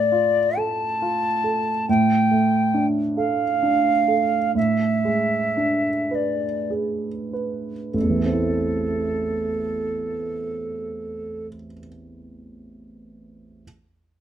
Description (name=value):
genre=classical, romantic duo for flute and grand piano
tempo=30-47 BPM (dotted quarters)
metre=6/8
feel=rubato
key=A minor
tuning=A4 = 441 Hz
part: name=silver concert flute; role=melody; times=0.0-11.5 s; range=A4 to A5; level=-22 LUFS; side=equal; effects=none
part: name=warm baby grand piano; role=accompaniment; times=0.0-13.7 s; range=A1 to B4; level=-23 LUFS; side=right 2 dB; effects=none
room=light reverb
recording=close, detailed microphones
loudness=-20 LUFS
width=side -10 dB against mid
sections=0.0-7.9 A section; 7.9-11.4 B section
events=slowing down 0.6-7.9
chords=0.0 Dm/A; 4.6 E7/A; 7.9 Am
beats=0.57 | 1.87 3.17 | 4.56 6.12 | 7.95 9.68